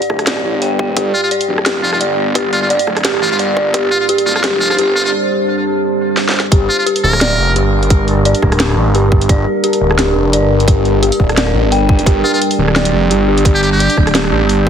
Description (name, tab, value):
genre	half-time drum and bass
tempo	173 BPM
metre	4/4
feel	swing 54% on 16ths, half-time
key	G minor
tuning	A4 = 443 Hz
part	deep dark ambient pad	sustained chords	1.2-14.7 s	G3 to A5	-19 LUFS	equal	chorus, built-in reverb, vintage 12-bit sampler grit, sidechain pumping
part	dark detuned synth bell	arpeggios	0.0-14.7 s	G4 to G5	-17 LUFS	equal	chorus, phaser, dub echo
part	drum and bass drum kit	drums	0.0-14.6 s	hi-hat, rim click, snare drum	-18 LUFS	right 1 dB	high-pass filter on hats, high-pass filter on snare
part	phased detuned saw bass	bass	0.1-14.7 s	D1 to A1	-16 LUFS	equal	phaser, tube saturation, high-pass filter
part	electronic kick drum	drums	0.1-3.8, 6.5-14.7 s	none	-12 LUFS	equal	high-pass filter on kick
part	trumpet with metal mute	melody	1.1-7.5, 12.2-14.0 s	F4 to Bb4	-19 LUFS	equal	dub echo
room	moderate echo chamber reverb, RT60 1.4 s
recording	heavily compressed radio sound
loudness	-11 LUFS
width	side -8 dB against mid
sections	0.0-6.5 A section; 6.5-14.7 B section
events	build-up 0.0-6.5; drum fill 6.2-6.5; drop 6.5-14.7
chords	0.0 Gm